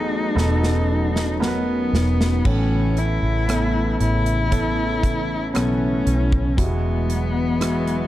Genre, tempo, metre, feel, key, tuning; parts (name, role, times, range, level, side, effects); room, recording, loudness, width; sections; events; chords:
pop ballad; 58 BPM; 4/4; straight; A4 = 439 Hz
warm cello; melody; 0.0-8.1 s; B3 to E4; -25 LUFS; left 2 dB
warm concert grand piano; accompaniment; 0.0-8.1 s; A2 to B4; -26 LUFS; right 2 dB
sweeping resonant pad; sustained chords; 0.0-8.1 s; C#3 to F#4; -28 LUFS; equal; chorus
vintage muted fingered electric bass; bass; 0.0-8.1 s; E1 to B1; -22 LUFS; equal
modern studio drum kit; drums; 0.4-8.1 s; crash cymbal, hi-hat, kick drum, rim click, snare drum; -24 LUFS; equal
picked steel-string acoustic guitar; arpeggios; 2.5-8.1 s; E2 to F#4; -31 LUFS; left 4 dB
light reverb; dark, warm production; -18 LUFS; side -14 dB against mid
0.0-2.5 A section; 2.5-8.1 B section
drum fill 0.4-2.5
0.0 B7/E; 2.5 Aadd9; 6.6 Eadd9